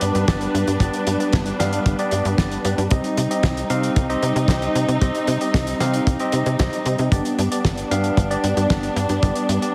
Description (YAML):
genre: italo disco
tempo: 114 BPM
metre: 4/4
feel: straight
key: C harmonic minor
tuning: A4 = 440 Hz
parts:
  - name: muted studio string section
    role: sustained chords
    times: 0.0-9.7 s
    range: G3 to B4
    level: -26 LUFS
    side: equal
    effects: none
  - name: barky tine electric piano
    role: stabs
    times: 0.0-9.7 s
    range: B3 to F5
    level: -27 LUFS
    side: equal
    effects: delay
  - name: tight sequencer bass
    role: bass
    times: 0.0-9.6 s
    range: G1 to C3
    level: -26 LUFS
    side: equal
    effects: tube saturation
  - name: damped 70s drum kit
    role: drums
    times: 0.0-9.7 s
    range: hi-hat, snare drum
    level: -29 LUFS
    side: equal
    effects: small room reverb
  - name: kick drum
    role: drums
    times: 0.3-9.3 s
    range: none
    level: -22 LUFS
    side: equal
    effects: small room reverb
room: moderate digital room reverb, RT60 1.0 s, small room reverb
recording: heavily compressed radio sound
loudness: -20 LUFS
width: mono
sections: 0.0-9.7 A section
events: none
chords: 0.0 G; 2.9 Cm; 7.1 G